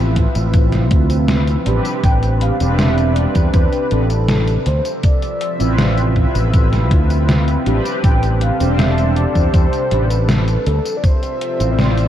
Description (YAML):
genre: vaporwave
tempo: 80 BPM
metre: 4/4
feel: straight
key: D dorian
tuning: A4 = 440 Hz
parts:
  - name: mellow synth brass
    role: accompaniment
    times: 0.0-12.1 s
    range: C4 to C5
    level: -21 LUFS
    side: right 1 dB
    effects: wide subtle chorus, diffuse ambient delay
  - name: lush unison pad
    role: sustained chords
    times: 0.0-12.1 s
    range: C3 to E5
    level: -25 LUFS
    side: equal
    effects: chorus, phaser
  - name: fretless electric bass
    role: bass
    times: 0.0-12.1 s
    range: E1 to E2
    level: -16 LUFS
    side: equal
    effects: lush chorus
  - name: detuned 8-bit digital drum machine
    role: drums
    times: 0.2-12.1 s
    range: hi-hat, snare drum, tambourine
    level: -22 LUFS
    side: equal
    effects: none
  - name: electronic kick drum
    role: drums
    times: 0.2-11.2 s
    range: none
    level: -15 LUFS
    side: equal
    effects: none
  - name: warm velvety synth lead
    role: melody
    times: 2.0-12.1 s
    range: A4 to G5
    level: -23 LUFS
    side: left 1 dB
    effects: chorus, tape echo
room: moderate plate reverb, RT60 3.5 s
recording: dreamy mix soaked in reverb, cassette tape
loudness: -13 LUFS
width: side -11 dB against mid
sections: 0.0-12.1 A section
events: none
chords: 0.0 Dm9; 2.0 Am11; 4.7 Dm9; 8.0 Am11; 10.7 Dm9